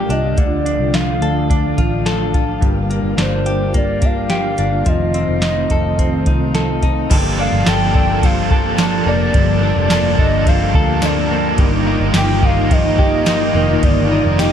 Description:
dream pop; 107 BPM; 4/4; straight; G minor; A4 = 441 Hz
ensemble organ-string; sustained chords; 0.0-14.5 s; D3 to A4; -20 LUFS; equal; ensemble chorus
direct-recorded clean electric guitar; arpeggios; 0.0-14.5 s; G2 to A4; -21 LUFS; left 3 dB; wide subtle chorus, tape echo
vintage muted fingered electric bass; bass; 0.0-14.5 s; F1 to D2; -20 LUFS; equal
warbly nostalgic lead; melody; 0.1-14.5 s; C5 to G5; -22 LUFS; equal; chorus, tape echo
soft vintage rhythm box; drums; 0.1-14.5 s; crash cymbal, hi-hat, kick drum, ride cymbal, snare drum, tambourine; -17 LUFS; equal
overdriven electric guitar; accompaniment; 7.1-14.5 s; G2 to A4; -22 LUFS; right 3 dB; tremolo, analog chorus
light reverb; dark, warm production; -13 LUFS; side -9 dB against mid
0.0-7.1 A section; 7.1-14.5 B section
0.4 Dm; 2.6 Gm7; 4.9 F7; 7.1 Gm9; 11.6 F9sus4
| 0.38 0.94 1.50 2.06 | 2.62 3.18 3.74 4.30 | 4.86 5.42 5.98 6.54 | 7.11 7.67 8.23 8.79 | 9.35 9.91 10.47 11.03 | 11.59 12.15 12.71 13.27 | 13.83 14.39

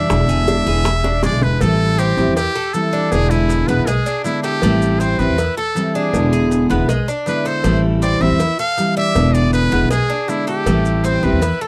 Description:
latin, Cuban son and guajira; 159 BPM; 4/4; straight; A minor; A4 = 439 Hz
trumpet with metal mute; melody; 0.0-11.7 s; E4 to F5; -23 LUFS; equal
picked steel-string acoustic guitar; accompaniment; 0.0-11.5 s; B2 to E4; -21 LUFS; equal
Cuban tres; arpeggios; 0.0-11.7 s; G#3 to A4; -26 LUFS; equal
upright bass; bass; 0.0-11.5 s; E1 to E2; -21 LUFS; equal
bongos and cowbell; percussion; 0.1-11.6 s; -29 LUFS; equal
maracas; percussion; 0.1-11.6 s; -38 LUFS; equal
light reverb; dry, close 1970s-style studio recording; -17 LUFS; mono
0.0-1.6 A section; 1.6-11.7 B section
drum fill 1.0-1.6
0.1 E7; 1.6 Am7; 3.1 E7; 4.6 Am7; 6.1 E7; 7.6 Am7; 9.2 E7; 10.7 Am7
| 0.10 0.48 0.86 1.23 | 1.61 1.99 2.37 2.74 | 3.12 3.50 3.87 4.25 | 4.63 5.01 5.38 5.76 | 6.14 6.51 6.89 7.27 | 7.64 8.02 8.40 8.78 | 9.15 9.53 9.91 10.29 | 10.66 11.04 11.42

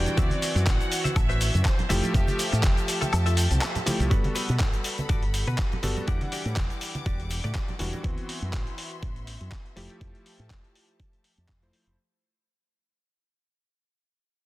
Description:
nu-disco, nu disco; 122 BPM; 4/4; swing 55% on 16ths; A4 = 440 Hz
rich chamber violin section; melody; 0.0-3.6 s; G4 to G5; -35 LUFS; right 2 dB; tape echo
clear electric grand piano; accompaniment; 0.0-12.0 s; E3 to F#5; -33 LUFS; left 1 dB; sidechain pumping, tape echo
rich symphonic string section; sustained chords; 0.0-12.0 s; F3 to D6; -39 LUFS; equal; sidechain pumping
direct-recorded clean electric guitar; riff; 0.0-7.7 s; F4 to G5; -36 LUFS; left 1 dB; wide subtle chorus
fingered electric bass with an envelope filter; bass; 0.0-12.0 s; E1 to B2; -27 LUFS; equal
dusty soul sampler-style drum kit; drums; 0.1-12.0 s; cabasa, handclaps, hi-hat, woodblock; -31 LUFS; left 1 dB; overdrive
egg shaker and congas; percussion; 0.1-8.0 s; -34 LUFS; right 2 dB
electronic kick drum; drums; 0.2-11.6 s; -26 LUFS; equal; overdrive
digital ambience; dense, heavily limited modern master; -23 LUFS; side -17 dB against mid
0.0-4.1 A section; 4.1-12.0 B section
drop 0.0-4.1; clean electric guitar fill 0.0, 3.1-4.1; kick drops out 3.1-4.1; fade-out 4.1-12.0
0.2 D13; 1.9 Fmaj9; 4.1 Gmaj9; 6.1 Em9; 8.0 D13 (rootless); 9.8 Fmaj9
| 0.17 0.67 1.16 1.65 | 2.14 2.63 3.13 3.62 | 4.11 4.60 5.09 5.58 | 6.08 6.57 7.06 7.55 | 8.04 8.54 9.03 9.52 | 10.01 10.50 10.99 11.49

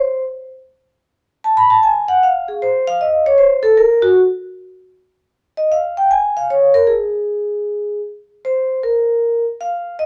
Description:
jazz; 154 BPM; 4/4; swing 67% on 8ths; A4 = 440 Hz
vibraphone with medium mallets; solo; 0.0-10.1 s; Gb4 to Cb6; -16 LUFS; equal
wet club reverb, RT60 0.9 s; -16 LUFS; mono
0.0-5.3 A section; 5.3-10.1 B section
vibraphone solo 0.0-5.3
0.24 | 0.63 1.02 1.41 1.79 | 2.18 2.57 2.96 3.35 | 3.74 4.13 4.52 4.91 | 5.29 5.68 6.07 6.46 | 6.85 7.24 7.63 8.02 | 8.41 8.80 9.19 9.58 | 9.96

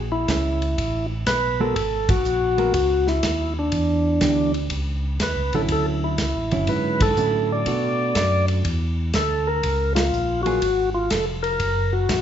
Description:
soul jazz organ trio; 122 BPM; 4/4; swing 67% on 8ths; A4 = 440 Hz
tonewheel organ; bass; 0.0-12.2 s; E#1 to B2; -25 LUFS; equal; overdrive, slow rotary speaker
percussive tonewheel organ; melody; 0.1-12.2 s; D4 to D5; -22 LUFS; left 1 dB; slow rotary speaker
hollow-body jazz guitar; accompaniment; 0.3-10.6 s; D3 to A#4; -26 LUFS; right 4 dB
warm soul drum kit; drums; 0.3-12.2 s; hi-hat, kick drum, ride cymbal, snare drum; -28 LUFS; equal
moderate recital hall reverb, RT60 1.5 s; recorded in a church or concert hall, nothing above 7.8 kHz; -19 LUFS; side -9 dB against mid
0.0-12.2 A section
band accent 2.0, 6.9, 9.9
0.0 A#m7b5; 0.8 Asus2; 1.8 G#7sus2; 3.7 Em7; 4.7 A; 5.7 Dmaj9; 7.7 Bm7; 8.7 A#maj7#11 (rootless); 9.6 F#maj9
0.28 0.78 1.27 | 1.76 2.25 2.74 3.23 | 3.73 4.22 4.71 5.20 | 5.70 6.19 6.68 7.17 | 7.67 8.16 8.65 9.14 | 9.63 10.13 10.62 11.11 | 11.60 12.09

